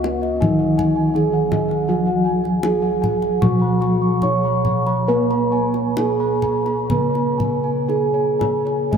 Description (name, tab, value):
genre	Javanese gamelan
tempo	57-81 BPM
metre	4/4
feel	straight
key	Db slendro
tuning	A4 = 440 Hz
part	gamelan-type bronze metallophone	melody	0.0-9.0 s	Eb4+30c to Db5	-21 LUFS	right 1 dB	none
part	gamelan-type bronze metallophone	accompaniment	0.0-9.0 s	Eb3+30c to Cb4-45c	-22 LUFS	right 2 dB	none
part	gamelan-type bossed gongs	arpeggios	0.0-9.0 s	Db5 to Db6	-28 LUFS	left 4 dB	none
part	gamelan-type bronze metallophone	arpeggios	0.0-9.0 s	Cb5-45c to Db6	-28 LUFS	right 2 dB	none
part	gamelan-type bossed gongs	bass	0.0-9.0 s	Db2 to Cb5-45c	-24 LUFS	left 2 dB	none
part	kendang	percussion	0.0-9.0 s	none	-27 LUFS	left 2 dB	none
room	wet huge ambient reverb, RT60 8.1 s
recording	in a vast, echoing space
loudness	-16 LUFS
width	side -7 dB against mid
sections	0.0-8.9 A section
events	none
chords	none